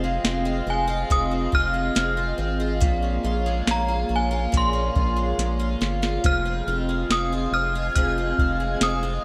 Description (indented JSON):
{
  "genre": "dream pop",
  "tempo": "70 BPM",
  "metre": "4/4",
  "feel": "straight",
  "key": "F minor",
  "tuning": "A4 = 439 Hz",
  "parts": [
    { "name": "hollow soft pad", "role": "sustained chords", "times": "0.0-9.2 s", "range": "Bb3 to F5", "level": "-31 LUFS", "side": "equal", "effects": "chorus" },
    { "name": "picked twelve-string acoustic guitar", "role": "arpeggios", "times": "0.0-9.2 s", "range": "F2 to F4", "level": "-32 LUFS", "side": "equal", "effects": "lush chorus, digital delay" },
    { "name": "round analog bass", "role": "bass", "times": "0.0-9.2 s", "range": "F1 to Bb1", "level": "-29 LUFS", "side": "equal", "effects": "none" },
    { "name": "soft vintage rhythm box", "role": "drums", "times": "0.2-9.0 s", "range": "hi-hat, kick drum, snare drum", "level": "-25 LUFS", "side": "equal", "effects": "none" },
    { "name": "synth chime", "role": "melody", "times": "0.7-9.2 s", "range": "Ab5 to F6", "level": "-28 LUFS", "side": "equal", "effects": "ensemble chorus, digital delay" },
    { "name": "backwards swelling texture", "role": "texture", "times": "7.3-9.0 s", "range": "Ab5", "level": "-43 LUFS", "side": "equal", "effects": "built-in reverb, ensemble chorus, digital delay" }
  ],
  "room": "moderate plate reverb, RT60 2.0 s, digital ambience",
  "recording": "bright 1980s-style digital production",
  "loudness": "-23 LUFS",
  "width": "mono",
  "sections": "0.0-9.2 A section",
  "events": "drum fill 5.4-6.2",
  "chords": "0.0 Fm7; 2.8 Bbm7; 6.2 Fm7"
}